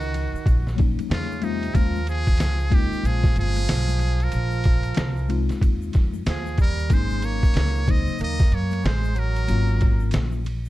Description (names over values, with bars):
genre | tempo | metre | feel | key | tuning
hip hop, jazz-hop | 93 BPM | 4/4 | swing 62% on 16ths | Ab mixolydian | A4 = 440 Hz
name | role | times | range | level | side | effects
trumpet with metal mute | melody | 0.0-10.1 s | Eb4 to Eb5 | -31 LUFS | left 1 dB | plate reverb
breathy tenor saxophone | second line | 0.0-10.1 s | C3 to C4 | -32 LUFS | right 13 dB | none
upright bass | bass | 0.0-10.7 s | G1 to Gb2 | -24 LUFS | equal | none
egg shaker and congas | percussion | 0.0-10.7 s | none | -40 LUFS | left 12 dB | none
trip hop sampler-style drum kit | drums | 0.1-10.6 s | hi-hat, kick drum, ride cymbal, snare drum | -21 LUFS | equal | none
mellow tine electric piano | accompaniment | 0.8-10.4 s | Db3 to F4 | -29 LUFS | left 8 dB | medium stereo tremolo
room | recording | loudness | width
little or no reverb | dark, warm production | -20 LUFS | side -16 dB against mid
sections
0.0-10.7 A section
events
none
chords
0.0 Ab9sus4; 1.7 Eb9sus4; 4.3 Bb9sus4; 6.9 Ab9sus4